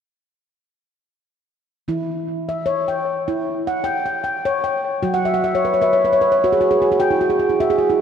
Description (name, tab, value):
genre	world meditative, meditative tuned percussion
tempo	76 BPM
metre	4/4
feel	swing 55% on 16ths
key	unclear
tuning	A4 = 439 Hz
part	handpan	solo	1.9-8.0 s	E3 to G5	-16 LUFS	equal	analog delay
room	wet lush hall reverb, RT60 2.8 s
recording	dreamy mix soaked in reverb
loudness	-17 LUFS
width	side -8 dB against mid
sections	1.9-8.0 A section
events	handpan fill 5.1-8.0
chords	1.9 Em69; 5.0 F#9sus4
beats	| 1.89 2.68 3.46 4.25 | 5.03 5.82 6.60 7.39